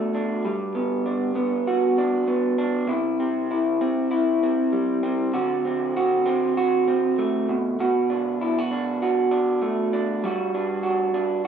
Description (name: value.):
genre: indie pop.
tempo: 98 BPM.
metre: 4/4.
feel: swing 60% on 16ths.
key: C lydian.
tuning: A4 = 440 Hz.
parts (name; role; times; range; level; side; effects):
electric guitar through a small old amp; solo; 0.0-11.5 s; B2 to F#4; -21 LUFS; right 1 dB; warbly pitch drift.
room: moderate studio reverb, RT60 0.6 s.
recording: band playing live in one room, small room ambience.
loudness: -21 LUFS.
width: side -8 dB against mid.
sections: 0.0-2.9 A section; 2.9-11.5 B section.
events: none.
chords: 0.5 Gmaj7; 2.9 C; 5.3 D7; 7.5 Bm7; 10.2 Gmaj7(no3).